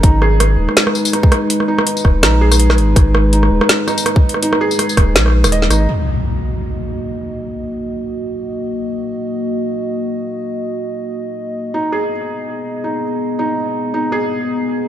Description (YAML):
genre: half-time drum and bass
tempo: 164 BPM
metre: 4/4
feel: swing 56% on 16ths, half-time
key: Eb minor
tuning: A4 = 440 Hz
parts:
  - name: dark analog pad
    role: sustained chords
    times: 0.0-14.9 s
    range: Ab3 to Eb5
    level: -20 LUFS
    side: left 1 dB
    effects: chorus, sidechain pumping
  - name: felt-muted upright piano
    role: arpeggios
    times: 0.0-5.9, 11.7-14.9 s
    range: Eb4 to Eb5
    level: -21 LUFS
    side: right 2 dB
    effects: dub echo
  - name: saturated sub bass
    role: bass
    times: 0.0-5.9 s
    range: Eb1 to Bb1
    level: -13 LUFS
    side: equal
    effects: none
  - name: drum and bass drum kit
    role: drums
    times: 0.0-5.8 s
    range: hi-hat, rim click, snare drum, tambourine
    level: -16 LUFS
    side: equal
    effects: low-pass filter on snare, low-pass filter on hats, low-pass filter on perc, low-pass filter on room
  - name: electronic kick drum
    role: drums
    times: 0.0-5.1 s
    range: none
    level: -11 LUFS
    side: equal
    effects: none
  - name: impact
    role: sound effects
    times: 5.9-7.4 s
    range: none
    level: -22 LUFS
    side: left 1 dB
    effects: none
room: light reverb, digital ambience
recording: none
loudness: -14 LUFS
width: side -11 dB against mid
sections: 0.0-5.9 A section; 5.9-14.9 B section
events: drop 0.0-5.9; impact 5.9-7.4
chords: 0.0 Abm; 5.9 Ebm; 11.7 Abm